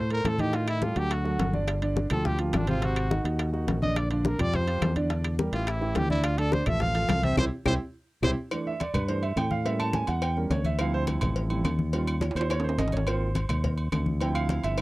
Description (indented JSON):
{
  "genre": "Afro-Cuban jazz",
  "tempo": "211 BPM",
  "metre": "4/4",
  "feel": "straight",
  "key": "unclear",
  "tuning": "A4 = 440 Hz",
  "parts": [
    { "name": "bright trumpet", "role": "melody", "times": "0.0-8.3 s", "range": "Bb3 to F5", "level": "-30 LUFS", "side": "equal", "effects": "none" },
    { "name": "warm concert grand piano", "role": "accompaniment", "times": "0.0-14.8 s", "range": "C3 to A5", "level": "-30 LUFS", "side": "right 2 dB", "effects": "none" },
    { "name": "fingered electric bass", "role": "bass", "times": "0.0-14.8 s", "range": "G1 to A2", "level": "-28 LUFS", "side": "equal", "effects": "none" },
    { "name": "congas", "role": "percussion", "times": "0.1-14.8 s", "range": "none", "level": "-32 LUFS", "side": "left 1 dB", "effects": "none" },
    { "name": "timbales and agogo bells", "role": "percussion", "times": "0.1-14.8 s", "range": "none", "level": "-35 LUFS", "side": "right 3 dB", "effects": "none" },
    { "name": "bongos and cowbell", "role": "percussion", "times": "0.3-14.8 s", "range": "none", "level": "-35 LUFS", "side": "left 4 dB", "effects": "none" },
    { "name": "claves", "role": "percussion", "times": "0.3-14.8 s", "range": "none", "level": "-38 LUFS", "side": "left 6 dB", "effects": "none" }
  ],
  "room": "little or no reverb",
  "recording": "dry, close 1970s-style studio recording",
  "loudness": "-24 LUFS",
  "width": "side -19 dB against mid",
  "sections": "0.0-8.5 A section; 8.5-14.8 A section",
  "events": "trumpet solo 0.0-8.5; band accent 7.4-8.5; drum fill 7.8-8.5, 12.2-13.1; grand piano solo 8.5-14.8",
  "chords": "0.0 F (rootless); 0.5 F13; 1.1 D; 1.7 G7sus4; 2.8 Ab9; 4.0 Bb69; 5.1 Em7b5; 5.7 A5; 6.2 Dm7; 7.4 C; 8.5 G13; 9.7 A7b9; 10.8 Dm11; 11.9 Eb7; 13.1 Ab69; 14.2 Dm7"
}